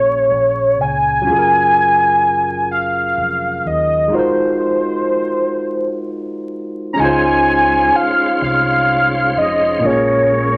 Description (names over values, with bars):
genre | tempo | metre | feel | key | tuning
R&B | 42 BPM (dotted quarters) | 6/8 | straight | Db major | A4 = 440 Hz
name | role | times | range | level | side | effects
warm velvety synth lead | melody | 0.0-10.6 s | C5 to Bb5 | -17 LUFS | equal | chorus
barky tine electric piano | accompaniment | 0.0-10.6 s | Bb2 to Db5 | -23 LUFS | equal | none
deep dub fingered electric bass | bass | 0.0-10.6 s | F1 to Eb2 | -29 LUFS | equal | none
tonewheel organ | sustained chords | 7.0-10.6 s | Ab3 to C5 | -26 LUFS | equal | chorus vibrato, fast rotary speaker
room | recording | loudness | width
moderate large studio reverb, RT60 1.1 s | vinyl crackle | -15 LUFS | mono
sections
0.0-7.0 A section; 7.0-10.6 B section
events
break 4.1-7.0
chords
0.0 Bbm7; 1.3 Gbmaj9; 4.1 Ab13; 7.0 Dbmaj7; 9.8 Bbm7